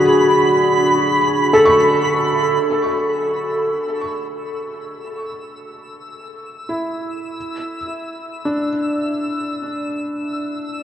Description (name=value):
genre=ambient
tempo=free time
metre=none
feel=none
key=unclear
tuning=A4 = 440 Hz
part: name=felt-muted upright piano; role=arpeggios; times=0.0-10.8 s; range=D3 to C#6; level=-18 LUFS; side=equal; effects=diffuse ambient delay
part: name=twinkling granular texture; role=texture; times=0.0-10.8 s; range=B5 to E6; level=-23 LUFS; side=right 1 dB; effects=built-in reverb
room=wet huge ambient reverb, RT60 8.7 s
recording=worn, warbling old tape, cassette tape, warbly pitch drift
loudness=-16 LUFS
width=side -10 dB against mid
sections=0.0-2.6 A section; 2.6-10.8 B section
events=fade-in on felt piano 2.6-10.8; fade-in on synth texture 2.6-10.8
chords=0.0 Bm7; 2.6 A; 7.4 Dsus2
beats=free time